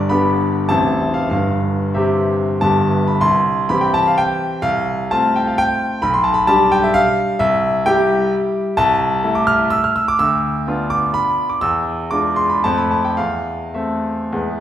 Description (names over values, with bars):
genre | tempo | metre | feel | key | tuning
classical, romantic triple-time dance for piano with dotted rhythms | 87-139 BPM | 3/4 | rubato | C major, A minor from 8.8 s | A4 = 439 Hz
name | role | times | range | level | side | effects
bright grand piano | solo | 0.0-14.6 s | A0 to F6 | -15 LUFS | equal | none
room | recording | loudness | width
wet recital hall reverb, RT60 1.5 s | heard from further back in the room | -15 LUFS | side -11 dB against mid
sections
0.0-3.2 A section; 3.2-14.6 B section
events
none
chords
0.0 G; 0.7 Am; 1.3 C/G; 2.6 G; 3.2 C; 4.6 F/C; 6.0 G7/B; 7.4 C; 8.8 Am/C; 10.2 Bdim/D; 11.6 E7b9; 12.6 F; 13.2 Am/E